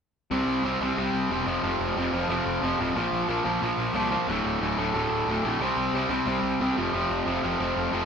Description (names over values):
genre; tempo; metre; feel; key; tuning
punk; 181 BPM; 4/4; straight; unclear; A4 = 441 Hz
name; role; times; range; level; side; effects
distorted electric guitar; riff; 0.3-8.1 s; D2 to C4; -24 LUFS; equal; distortion
fuzz picked electric bass; bass; 0.3-8.0 s; D1 to C2; -33 LUFS; equal; overdrive
room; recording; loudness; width
moderate stone room reverb, RT60 1.0 s; band playing live in one room; -24 LUFS; side -6 dB against mid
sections
0.3-8.1 A section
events
none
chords
0.3 C5; 1.5 F5; 3.0 Bb5; 4.3 D5; 5.6 C5; 6.8 F5